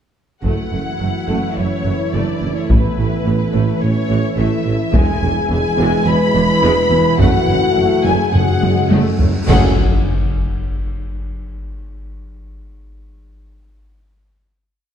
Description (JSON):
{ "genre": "cinematic, epic orchestral film score", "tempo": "106 BPM", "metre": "4/4", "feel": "straight", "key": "F# minor", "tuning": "A4 = 440 Hz", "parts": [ { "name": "rich symphonic violin section", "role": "melody", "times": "0.4-9.8 s", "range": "B4 to B5", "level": "-24 LUFS", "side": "left 4 dB", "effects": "none" }, { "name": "rich studio violin section", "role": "second line", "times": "0.4-9.8 s", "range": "B4 to B5", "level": "-25 LUFS", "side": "left 2 dB", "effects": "none" }, { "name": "rich symphonic viola section", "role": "accompaniment", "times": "0.4-9.8 s", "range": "E3 to G#4", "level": "-25 LUFS", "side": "right 1 dB", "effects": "none" }, { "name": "clear trombone section", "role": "sustained chords", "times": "0.4-9.7 s", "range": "C#3 to G#4", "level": "-23 LUFS", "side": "right 3 dB", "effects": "none" }, { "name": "mellow French horn section", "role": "sustained chords", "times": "0.4-9.7 s", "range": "B3 to B4", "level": "-22 LUFS", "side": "left 5 dB", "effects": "none" }, { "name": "mellow tuba", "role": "bass", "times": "0.4-9.7 s", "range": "E1 to A1", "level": "-23 LUFS", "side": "right 4 dB", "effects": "none" }, { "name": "rich symphonic cello section", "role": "bass", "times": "0.4-9.8 s", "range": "E2 to A2", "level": "-22 LUFS", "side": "right 2 dB", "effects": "none" }, { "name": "rich symphonic double bass section", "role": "bass", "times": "0.4-9.8 s", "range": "E1 to A1", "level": "-22 LUFS", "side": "right 4 dB", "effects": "none" }, { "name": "taiko ensemble", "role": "drums", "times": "0.4-10.6 s", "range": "none", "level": "-18 LUFS", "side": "left 1 dB", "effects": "none" }, { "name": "cymbal swell, clash cymbals and concert bass drum", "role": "percussion", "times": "7.2-10.6 s", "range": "none", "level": "-23 LUFS", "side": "left 1 dB", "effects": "none" }, { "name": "cymbal swell and sub drop", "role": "sound effects", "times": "8.7-11.7 s", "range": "none", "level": "-27 LUFS", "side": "left 1 dB", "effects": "none" }, { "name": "timpani", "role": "percussion", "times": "8.3-9.8 s", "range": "F#2", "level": "-20 LUFS", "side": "left 2 dB", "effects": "none" } ], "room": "wet concert hall reverb, RT60 1.9 s", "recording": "dark, warm production", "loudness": "-13 LUFS", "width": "side -8 dB against mid", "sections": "0.4-9.5 theme; 9.5-11.8 final chord", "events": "drum fill 8.6-9.5; cymbal swell 8.7-9.5; band accent 9.5-10.1; impact 9.5-11.8", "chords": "0.4 F#m7; 2.7 Aadd9; 4.9 E; 7.2 F#m9; 8.3 F#madd9" }